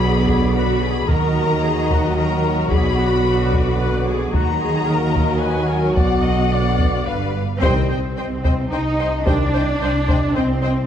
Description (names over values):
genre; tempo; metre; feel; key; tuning
cinematic, epic orchestral film score; 111 BPM; 3/4; straight; Eb harmonic minor, C minor from 7.6 s; A4 = 440 Hz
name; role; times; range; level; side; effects
warm symphonic violin section; melody; 0.0-10.9 s; C5 to B5; -26 LUFS; left 5 dB; none
clear symphonic violin section; second line; 0.0-10.7 s; Gb4 to G5; -28 LUFS; left 3 dB; none
bright symphonic viola section; accompaniment; 0.0-10.7 s; F#4 to Eb5; -26 LUFS; equal; none
mellow French horn section; sustained chords; 0.0-9.5 s; Gb3 to G4; -25 LUFS; left 4 dB; none
warm trombone section; sustained chords; 0.0-9.4 s; D3 to G3; -27 LUFS; right 4 dB; none
rich symphonic cello section; bass; 0.0-10.9 s; G2 to Eb4; -23 LUFS; right 2 dB; none
rich symphonic double bass section; bass; 0.0-10.8 s; G1 to Eb2; -23 LUFS; right 2 dB; none
taiko ensemble; drums; 0.3-10.6 s; none; -22 LUFS; equal; none
timpani; percussion; 7.6-8.4 s; C3; -30 LUFS; left 3 dB; none
room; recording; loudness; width
moderate scoring stage reverb, RT60 1.5 s; faint mains hum; -16 LUFS; side -9 dB against mid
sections
0.0-7.6 A section; 7.6-10.9 B section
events
band accent 7.6-8.2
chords
0.0 Bm; 1.1 Ebm; 2.7 Bm; 4.3 Ebm; 6.0 Bm; 7.1 G7; 7.6 Cm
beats
0.01 0.56 | 1.10 1.64 2.18 | 2.72 3.26 3.80 | 4.34 4.88 5.43 | 5.97 6.52 7.08 | 7.63 8.18 8.73 | 9.27 9.82 10.36